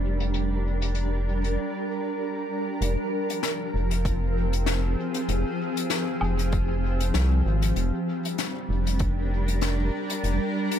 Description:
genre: ambient dub.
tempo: 97 BPM.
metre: 4/4.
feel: swing 56% on 16ths.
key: F minor.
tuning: A4 = 437 Hz.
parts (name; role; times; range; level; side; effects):
granular cloud pad; sustained chords; 0.0-10.8 s; F3 to Bb4; -28 LUFS; equal; built-in reverb.
round analog bass; bass; 0.0-10.4 s; F1 to C2; -24 LUFS; equal; none.
jazz brush drum kit; drums; 0.2-10.8 s; hi-hat, snare drum, woodblock; -32 LUFS; left 6 dB; dub echo.
electronic kick drum; drums; 4.1-9.1 s; none; -30 LUFS; equal; none.
room: light reverb, small room reverb.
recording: low-pass filter.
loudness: -24 LUFS.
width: side -9 dB against mid.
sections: 0.0-2.8 A section; 2.8-10.8 B section.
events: break 1.6-2.8.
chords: 0.0 Gm7/F; 2.8 Fmadd9; 7.8 Gm7/F.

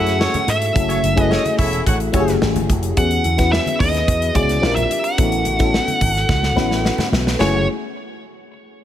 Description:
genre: polished 1980s jazz-funk pop.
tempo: 108 BPM.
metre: 4/4.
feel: straight.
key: F# minor.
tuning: A4 = 441 Hz.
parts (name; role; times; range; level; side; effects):
nasal lead guitar with a parked wah; melody; 0.0-7.7 s; C#5 to F#5; -21 LUFS; right 1 dB; overdrive.
clear horn section; second line; 0.0-2.4, 7.4-7.6 s; A3 to F#5; -26 LUFS; right 2 dB; none.
FM electric piano with soft pad layer; accompaniment; 0.0-7.7 s; A3 to B4; -21 LUFS; left 3 dB; analog chorus.
slap bass with an envelope filter; bass; 0.0-7.7 s; E1 to G#2; -21 LUFS; right 1 dB; none.
modern studio drum kit; drums; 0.1-7.5 s; hi-hat, kick drum, snare drum; -21 LUFS; equal; gated reverb.
congas; percussion; 0.3-7.7 s; none; -31 LUFS; right 3 dB; none.
room: light reverb.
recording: none.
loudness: -15 LUFS.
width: side -11 dB against mid.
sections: 0.0-7.4 A section; 7.4-8.8 B section.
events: drum fill 6.3-7.4.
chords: 0.0 F#m7; 3.0 E6; 4.6 A#69; 5.2 A69; 7.4 F#m7.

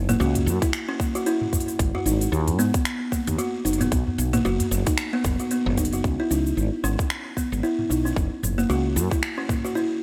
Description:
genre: organic downtempo.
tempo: 113 BPM.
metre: 4/4.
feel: swing 58% on 16ths.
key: C# dorian.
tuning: A4 = 439 Hz.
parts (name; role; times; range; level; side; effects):
woody fretless electric bass; bass; 0.0-9.1 s; F#1 to G#2; -27 LUFS; equal; sidechain pumping.
buzzing kalimba; arpeggios; 0.1-9.9 s; A#3 to A#4; -27 LUFS; equal; digital delay.
organic electronic drum kit; drums; 0.1-9.9 s; finger snaps, hi-hat, shaker, toms; -33 LUFS; equal; none.
udu; percussion; 0.4-5.9 s; none; -33 LUFS; equal; none.
electronic kick drum; drums; 0.6-9.6 s; none; -28 LUFS; equal; none.
room: digital ambience.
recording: none.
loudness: -24 LUFS.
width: mono.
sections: 0.0-6.0 A section; 6.0-10.0 B section.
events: none.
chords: 0.0 F#7; 1.8 G#7(no3); 3.9 B5; 6.0 C#m9; 8.2 F#7.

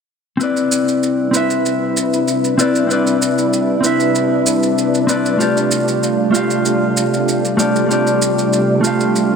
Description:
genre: sunset chillout.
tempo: 96 BPM.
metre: 4/4.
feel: straight.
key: unclear.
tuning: A4 = 439 Hz.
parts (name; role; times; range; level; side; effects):
mellow electric guitar; accompaniment; 0.4-9.4 s; A3 to F5; -15 LUFS; moving between left 4 dB and right 4 dB; auto-pan, tape echo.
soft string machine; sustained chords; 0.8-9.4 s; C3 to B4; -18 LUFS; right 1 dB; ensemble chorus, vintage 12-bit sampler grit.
shaker; drums; 0.4-9.3 s; none; -23 LUFS; right 4 dB; overdrive.
room: moderate lush hall reverb, RT60 2.8 s.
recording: none.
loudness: -13 LUFS.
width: side -6 dB against mid.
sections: 0.4-9.4 A section.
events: none.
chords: 0.4 Cmaj9; 5.4 F69.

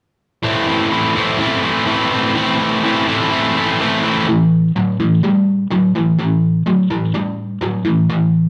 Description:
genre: rock.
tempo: 125 BPM.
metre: 4/4.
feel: straight.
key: A minor.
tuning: A4 = 440 Hz.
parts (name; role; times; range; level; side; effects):
distorted electric guitar; solo; 0.4-8.5 s; A2 to E4; -16 LUFS; equal; distortion.
room: wet studio reverb, RT60 0.9 s.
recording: none.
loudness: -16 LUFS.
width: mono.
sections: 0.4-4.3 A section; 4.3-8.5 B section.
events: none.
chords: 0.4 Am; 4.3 A5.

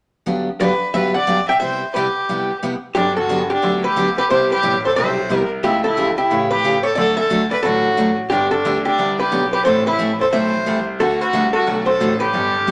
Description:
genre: country, western swing.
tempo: 179 BPM.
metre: 4/4.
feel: swing 63% on 8ths.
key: G major.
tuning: A4 = 441 Hz.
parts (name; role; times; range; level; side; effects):
picked steel-string acoustic guitar; accompaniment; 0.3-12.7 s; G2 to A4; -24 LUFS; equal; none.
archtop guitar, miked and amplified; melody; 0.6-12.7 s; G4 to G5; -22 LUFS; equal; none.
rich fiddle; second line; 0.6-12.7 s; D4 to E5; -22 LUFS; equal; none.
bright concert grand piano; bass; 3.0-12.7 s; G1 to A2; -28 LUFS; equal; none.
room: wet studio reverb, RT60 0.7 s.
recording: none.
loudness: -18 LUFS.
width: mono.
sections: 0.3-3.0 A section; 3.0-12.7 B section.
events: none.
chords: 0.3 Gmaj7; 1.6 Cmaj7; 3.0 Gmaj7; 4.3 Cmaj7; 5.6 A7/C#; 7.0 D; 8.3 G; 9.7 Am; 11.0 D7.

